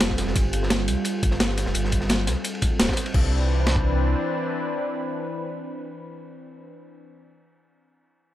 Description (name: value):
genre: liquid drum and bass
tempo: 172 BPM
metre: 4/4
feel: swing 53% on 16ths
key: C major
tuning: A4 = 440 Hz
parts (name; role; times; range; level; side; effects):
- lush unison pad; sustained chords; 0.0-6.7 s; E3 to B4; -28 LUFS; equal; chorus, sidechain pumping
- sub bass with octave; bass; 0.0-4.2 s; D1 to C2; -24 LUFS; equal; none
- breakbeat sampler-style drum kit; drums; 0.0-3.2 s; crash cymbal, hi-hat, snare drum; -25 LUFS; equal; none
- crunchy breakbeat drum kit; drums; 0.0-3.1 s; ride cymbal, snare drum; -33 LUFS; equal; high-pass filter on cymbals, high-pass filter on snare, high-pass filter on room
- breakbeat sampler-style drum kit; drums; 0.1-3.8 s; kick drum, snare drum; -24 LUFS; equal; none
room: light reverb, small room ambience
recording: none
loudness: -21 LUFS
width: side -13 dB against mid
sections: 0.0-3.1 A section; 3.1-5.9 B section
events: filter sweep on analog synth pad 0.0-3.1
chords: 0.0 G9sus4; 3.1 Cmaj9